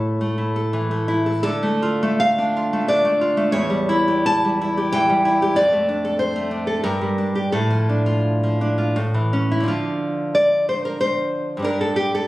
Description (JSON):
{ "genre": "romantic piece for solo classical guitar", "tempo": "74-95 BPM", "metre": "3/4", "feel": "rubato", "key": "D minor", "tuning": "A4 = 439 Hz", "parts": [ { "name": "nylon-string guitar", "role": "solo", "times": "0.0-12.3 s", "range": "E2 to A5", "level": "-18 LUFS", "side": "equal", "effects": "none" } ], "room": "light reverb", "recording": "recorded on a phone in the room, studio reverb, compression", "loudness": "-18 LUFS", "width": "side -17 dB against mid", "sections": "0.0-9.7 A section; 9.7-12.3 B section", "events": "none", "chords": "0.0 A; 1.4 Dm; 3.5 C#dim/E; 5.6 Dm/F; 6.9 Gm; 7.5 Dm/A; 9.0 A; 9.7 Dm; 11.7 Gm" }